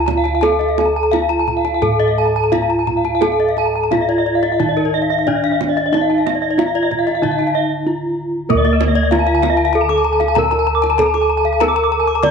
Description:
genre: Balinese gamelan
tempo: 86-96 BPM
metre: 4/4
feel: straight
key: D pelog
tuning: A4 = 438 Hz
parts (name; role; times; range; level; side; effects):
- gamelan-type bronze metallophone; melody; 0.0-12.3 s; Bb3-20c to D5; -18 LUFS; equal; none
- gamelan-type bronze metallophone; arpeggios; 0.0-12.1 s; Bb4-20c to D6; -21 LUFS; right 10 dB; none
- gamelan-type bossed gongs; bass; 0.0-12.3 s; D2 to Bb4-20c; -21 LUFS; right 1 dB; none
- gamelan-type bronze metallophone; arpeggios; 0.1-12.3 s; Bb4-20c to D6; -19 LUFS; left 10 dB; none
- kendang; percussion; 0.1-12.3 s; none; -25 LUFS; right 12 dB; none
room: moderate echo chamber reverb, RT60 1.7 s, studio reverb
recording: 1960s-style stereo with parts hard left and right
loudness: -14 LUFS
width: side -6 dB against mid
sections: 0.0-8.5 A section; 8.5-12.3 B section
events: break 7.5-8.5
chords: none

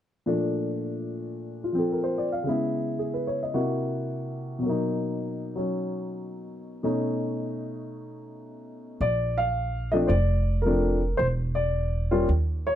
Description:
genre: jazz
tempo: 110 BPM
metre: 4/4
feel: swing 69% on 8ths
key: unclear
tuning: A4 = 440 Hz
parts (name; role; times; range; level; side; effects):
- dark upright piano; melody; 0.3-12.8 s; Bb2 to F5; -26 LUFS; left 1 dB; none
- upright bass; bass; 9.0-12.8 s; E1 to Eb2; -25 LUFS; right 1 dB; none
room: light reverb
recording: dark, warm production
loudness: -24 LUFS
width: side -11 dB against mid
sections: 0.3-9.0 A section; 9.0-12.8 B section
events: none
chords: 0.3 Bbmaj7; 2.5 Dbm7; 3.5 C7#11; 4.6 Bmaj7; 6.8 B9; 9.0 Bbmaj9; 11.2 E7(no3)

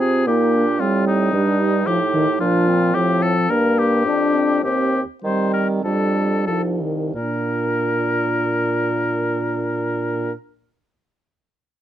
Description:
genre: quick classical-period movement for wind quintet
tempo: 88-113 BPM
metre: 4/4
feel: straight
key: Bb major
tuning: A4 = 440 Hz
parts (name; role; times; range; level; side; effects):
- warm oboe; second line; 0.0-10.3 s; Eb4 to C5; -23 LUFS; left 3 dB; none
- mellow French horn; accompaniment; 0.0-10.3 s; Bb2 to D4; -21 LUFS; left 1 dB; none
- mellow clarinet; accompaniment; 0.0-10.3 s; C4 to F4; -26 LUFS; right 6 dB; none
- mellow bassoon; bass; 0.0-10.3 s; C2 to Eb3; -24 LUFS; right 2 dB; none
room: little or no reverb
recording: close, detailed microphones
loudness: -17 LUFS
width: side -11 dB against mid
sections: 0.0-7.1 A section; 7.1-11.8 B section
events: slowing down 1.3-7.1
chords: 0.3 Eb; 2.4 Bb; 3.5 Gm; 4.6 Cm/Eb; 5.8 F7; 7.1 Bb

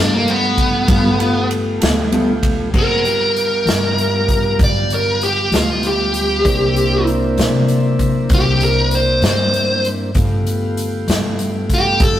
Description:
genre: slow blues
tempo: 65 BPM (dotted quarters)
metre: 12/8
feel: straight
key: G mixolydian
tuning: A4 = 440 Hz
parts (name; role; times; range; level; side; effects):
- smooth overdriven lead guitar; melody; 0.0-12.2 s; Bb3 to D5; -16 LUFS; equal; none
- mellow electric guitar; accompaniment; 0.0-2.3 s; G3 to A4; -19 LUFS; left 1 dB; harmonic tremolo
- tonewheel organ; sustained chords; 0.0-12.2 s; G3 to Ab4; -22 LUFS; right 1 dB; slow rotary speaker
- upright bass; bass; 0.0-12.2 s; G1 to C3; -20 LUFS; left 1 dB; none
- swinging big-band drum kit; drums; 0.3-12.1 s; crash cymbal, hi-hat, kick drum, ride cymbal, snare drum; -19 LUFS; equal; none
room: moderate stone room reverb, RT60 1.3 s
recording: rough rehearsal-room recording, tube saturation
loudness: -13 LUFS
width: side -12 dB against mid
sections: 0.0-2.7 A section; 2.7-12.2 B section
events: lead electric guitar solo 0.0-2.7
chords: 0.0 G9; 2.7 G7; 6.4 C9; 10.2 G9

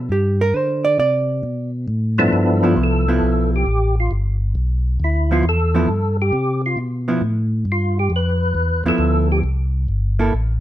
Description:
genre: soul jazz organ trio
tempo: 135 BPM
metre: 4/4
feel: swing 67% on 8ths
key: G mixolydian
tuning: A4 = 441 Hz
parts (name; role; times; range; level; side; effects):
- mellow tonewheel organ; bass; 0.0-10.6 s; G1 to D3; -19 LUFS; equal; chorus vibrato, slow rotary speaker
- hollow-body jazz guitar; accompaniment; 0.1-10.3 s; F3 to D5; -19 LUFS; right 2 dB; none
- percussive tonewheel organ; melody; 2.2-9.4 s; G2 to B4; -20 LUFS; equal; slow rotary speaker, chorus vibrato, plate reverb
room: light reverb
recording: none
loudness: -16 LUFS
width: side -13 dB against mid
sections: 0.0-2.3 A section; 2.3-10.6 A section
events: hollow-body jazz guitar solo 0.0-2.3; tonewheel organ solo 2.3-10.6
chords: 0.0 G; 0.6 G13; 9.4 C5

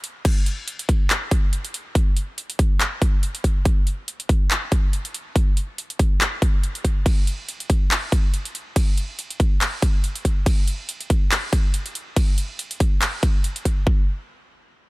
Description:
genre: future bass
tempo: 141 BPM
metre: 4/4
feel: swing 55% on 16ths, half-time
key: none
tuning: none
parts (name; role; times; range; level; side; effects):
- big-room dance drum kit; drums; 0.0-13.7 s; crash cymbal, handclaps, hi-hat; -26 LUFS; equal; overdrive
- electronic kick drum; drums; 0.2-14.0 s; none; -18 LUFS; equal; overdrive
room: digital ambience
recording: none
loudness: -19 LUFS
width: side -21 dB against mid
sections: 0.0-13.9 A section; 13.9-14.9 B section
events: break 0.0; drop 0.0-13.9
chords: none

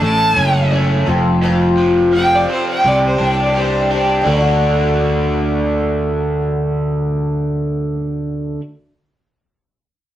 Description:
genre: rock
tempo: 85 BPM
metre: 4/4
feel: straight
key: D major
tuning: A4 = 441 Hz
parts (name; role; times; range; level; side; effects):
- rich fiddle; melody; 0.0-4.3 s; C5 to A5; -18 LUFS; equal; tape echo
- picked twelve-string acoustic guitar; accompaniment; 0.0-8.7 s; D3 to A4; -19 LUFS; left 1 dB; none
- overdriven electric guitar; riff; 0.0-8.6 s; F2 to F#4; -19 LUFS; right 1 dB; none
- sustaining fretless electric bass; bass; 0.0-8.6 s; F1 to D2; -19 LUFS; equal; none
room: wet studio reverb, RT60 0.6 s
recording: rough rehearsal-room recording, warm saturation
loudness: -13 LUFS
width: side -12 dB against mid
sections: 0.0-4.3 A section; 4.3-7.1 B section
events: fiddle solo 0.0-4.3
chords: 0.0 A; 1.1 F; 2.8 Cadd9; 4.3 D

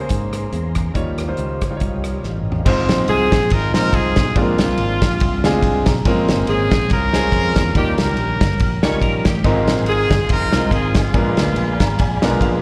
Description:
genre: uptempo gospel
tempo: 142 BPM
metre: 4/4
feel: swing 55% on 8ths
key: Ab major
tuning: A4 = 439 Hz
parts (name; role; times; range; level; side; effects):
- clear concert grand piano; accompaniment; 0.0-12.6 s; Ab2 to Bb5; -23 LUFS; equal; slapback echo
- mellow tonewheel organ; sustained chords; 0.0-2.6, 9.5-12.6 s; Db4 to C6; -34 LUFS; equal; slow rotary speaker, chorus vibrato
- pedal harmonium; sustained chords; 0.0-2.6 s; Db3 to Db4; -37 LUFS; equal; none
- fingered electric bass; bass; 0.0-12.6 s; F1 to Ab2; -24 LUFS; equal; none
- warm soul drum kit; drums; 0.1-12.5 s; crash cymbal, hi-hat, kick drum, ride cymbal, rim click, snare drum, toms; -22 LUFS; equal; none
- warm horn section; melody; 3.1-12.6 s; Ab3 to Bb4; -23 LUFS; equal; slapback echo
- clean electric guitar; second line; 8.8-9.7 s; G4 to Db5; -29 LUFS; equal; ensemble chorus, slapback echo
room: light reverb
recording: live gig heard through the venue's PA, recital hall reverb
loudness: -17 LUFS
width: mono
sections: 0.0-2.7 A section; 2.7-12.6 B section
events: drum fill 2.2-2.7; grand piano fill 5.2-6.1, 11.6-12.6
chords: 0.0 Bbm9; 1.0 Eb9; 2.7 Ab6; 4.4 Bb9; 6.1 Bbm9; 7.8 Eb9; 9.4 Ab69; 11.1 Bb7b9

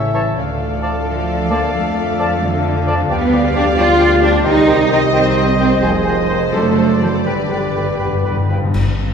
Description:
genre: classical, dramatic, fast romantic movement for symphony orchestra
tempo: 80-90 BPM (dotted quarters)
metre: 6/8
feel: rubato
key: D minor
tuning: A4 = 441 Hz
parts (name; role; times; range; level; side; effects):
- warm symphonic violin section; melody; 0.0-8.5 s; D5 to F5; -28 LUFS; left 5 dB; none
- dark clarinet; second line; 0.0-8.5 s; C#4 to F5; -26 LUFS; left 1 dB; none
- warm symphonic violin section; second line; 0.0-8.5 s; B4 to Eb5; -26 LUFS; left 1 dB; none
- warm symphonic viola section; accompaniment; 0.0-8.5 s; G4 to A4; -26 LUFS; equal; none
- mellow French horn section; sustained chords; 0.0-8.5 s; F4 to D5; -27 LUFS; left 3 dB; none
- warm trombone section; sustained chords; 0.0-8.5 s; C3 to A3; -25 LUFS; right 4 dB; none
- concert harp; arpeggios; 0.0-9.1 s; F2 to D6; -25 LUFS; left 4 dB; none
- warm trumpet section; stabs; 0.0-8.5 s; D5 to F5; -24 LUFS; left 1 dB; none
- warm studio double bass section; bass; 0.0-8.5 s; F1 to F2; -21 LUFS; right 2 dB; none
- warm symphonic cello section; bass; 0.0-8.5 s; C#3 to F4; -18 LUFS; right 2 dB; none
- clear oboe; second line; 0.1-8.6 s; B4 to D5; -27 LUFS; right 1 dB; none
- mellow silver concert flute; second line; 0.1-8.6 s; G5 to A5; -27 LUFS; left 2 dB; none
- mellow bassoon; accompaniment; 0.1-8.7 s; D3 to B3; -28 LUFS; right 1 dB; none
- cymbal swell, clash cymbals and concert bass drum; percussion; 5.8-9.1 s; none; -27 LUFS; left 1 dB; none
- timpani; percussion; 7.3-8.7 s; G2; -19 LUFS; left 2 dB; none
room: wet concert hall reverb, RT60 2.2 s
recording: heard from further back in the room, faint mains hum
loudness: -13 LUFS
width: side -6 dB against mid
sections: 0.0-8.8 A section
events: timpani fill 7.3-8.8; band accent 8.8-9.1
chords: 0.4 Dm; 1.7 Dm/F; 3.1 G7/D; 4.4 Cm; 5.8 Fm7; 6.5 D7/F#; 7.3 G

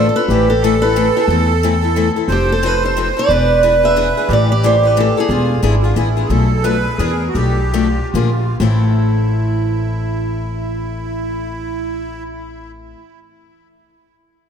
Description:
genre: acoustic string swing (jazz manouche)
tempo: 125-180 BPM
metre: 3/4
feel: swing 61% on 8ths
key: A minor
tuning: A4 = 441 Hz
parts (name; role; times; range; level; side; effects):
- picked steel-string acoustic guitar; melody; 0.0-5.8 s; G4 to E5; -16 LUFS; right 2 dB; ping-pong delay
- accordion; second line; 0.0-12.2 s; E4 to C5; -21 LUFS; right 5 dB; light tremolo tuning, ping-pong delay
- picked steel-string acoustic guitar; accompaniment; 0.0-13.0 s; A2 to A4; -20 LUFS; left 7 dB; none
- upright bass; bass; 0.0-12.9 s; E1 to E2; -17 LUFS; equal; none
room: wet church reverb, RT60 3.1 s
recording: dreamy mix soaked in reverb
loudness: -13 LUFS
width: side -7 dB against mid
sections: 0.0-6.3 A section; 6.3-8.6 B section; 8.6-11.5 C section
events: slowing down 6.3-8.6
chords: 0.3 Am; 2.3 F7; 3.3 E7; 4.3 Am; 5.3 E7b9; 6.3 Bm7b5; 7.0 E7; 7.3 Bm7b5; 8.1 Bb7; 8.6 Am

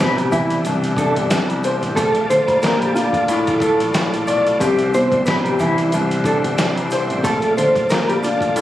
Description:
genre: hip hop, boom-bap hip-hop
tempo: 91 BPM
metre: 4/4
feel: swing 55% on 16ths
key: C major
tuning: A4 = 439 Hz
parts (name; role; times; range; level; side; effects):
- mellow electric guitar; melody; 0.0-8.5 s; E4 to C5; -19 LUFS; equal; tremolo, analog delay
- dark grand piano; accompaniment; 0.0-8.6 s; C2 to D5; -19 LUFS; left 1 dB; none
- tonewheel organ; sustained chords; 0.0-8.6 s; B2 to D5; -25 LUFS; right 1 dB; chorus vibrato, fast rotary speaker
- deep dub fingered electric bass; bass; 0.0-8.3 s; G1 to C2; -28 LUFS; equal; none
- trip hop sampler-style drum kit; drums; 0.0-8.6 s; hi-hat, kick drum, snare drum; -24 LUFS; equal; none
- woodblock and tube shaker; percussion; 0.2-8.6 s; none; -31 LUFS; right 1 dB; none
room: little or no reverb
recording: recorded on a phone in the room, studio reverb, vinyl crackle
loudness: -15 LUFS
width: side -13 dB against mid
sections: 0.0-8.6 A section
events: none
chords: 0.0 Cmaj9; 2.0 Bbmaj7; 4.6 Cmaj9; 7.2 Bbmaj7

